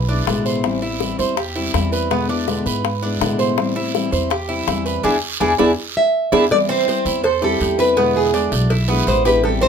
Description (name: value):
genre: latin, Cuban son and guajira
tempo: 164 BPM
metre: 4/4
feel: straight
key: A minor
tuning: A4 = 440 Hz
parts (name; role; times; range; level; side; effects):
- Cuban tres; arpeggios; 0.0-9.7 s; B3 to C5; -21 LUFS; right 4 dB; none
- upright bass; bass; 0.0-9.7 s; A1 to A2; -24 LUFS; equal; none
- fingerpicked steel-string acoustic guitar; accompaniment; 0.1-9.7 s; B2 to E4; -22 LUFS; left 4 dB; none
- bongos and cowbell; percussion; 0.3-9.6 s; none; -24 LUFS; left 7 dB; none
- guiro; percussion; 0.3-9.7 s; none; -30 LUFS; right 6 dB; none
- nylon-string guitar; melody; 6.0-9.7 s; G#4 to E5; -17 LUFS; right 1 dB; none
room: moderate studio ambience, RT60 0.5 s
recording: minimal, uncompressed stereo recording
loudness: -16 LUFS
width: side -7 dB against mid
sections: 0.0-6.5 A section; 6.5-9.7 B section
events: band accent 5.0-6.5; drum fill 5.6-6.5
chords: 0.0 E7; 0.6 Am7; 2.1 E7; 3.6 Am7; 5.0 E7; 6.5 Am7; 8.0 E7